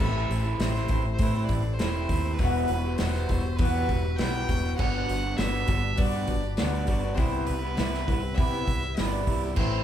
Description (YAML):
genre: folk rock and heartland rock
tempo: 100 BPM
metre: 4/4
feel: straight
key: unclear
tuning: A4 = 439 Hz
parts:
  - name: warm fiddle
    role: melody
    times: 0.0-9.8 s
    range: A4 to G5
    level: -34 LUFS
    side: equal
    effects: none
  - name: picked twelve-string acoustic guitar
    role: accompaniment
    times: 0.0-9.8 s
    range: E2 to F#4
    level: -34 LUFS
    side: left 2 dB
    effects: none
  - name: mellow tonewheel organ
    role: sustained chords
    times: 0.0-9.8 s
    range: G4 to C6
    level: -44 LUFS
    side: right 2 dB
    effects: none
  - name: electric guitar through a small old amp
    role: riff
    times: 0.0-9.8 s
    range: E2 to F#4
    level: -32 LUFS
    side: right 1 dB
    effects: none
  - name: fingered electric bass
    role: bass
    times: 0.0-9.8 s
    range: E1 to C3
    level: -29 LUFS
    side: equal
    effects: none
  - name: natural country drum kit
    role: drums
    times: 0.0-9.7 s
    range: crash cymbal, hi-hat, kick drum, snare drum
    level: -29 LUFS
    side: equal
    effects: none
room: moderate large studio reverb, RT60 1.2 s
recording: band playing live in one room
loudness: -24 LUFS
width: side -10 dB against mid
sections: 0.0-9.8 A section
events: none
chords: 0.0 Am; 2.4 Emadd9; 4.8 Gmaj7; 7.2 Cmaj7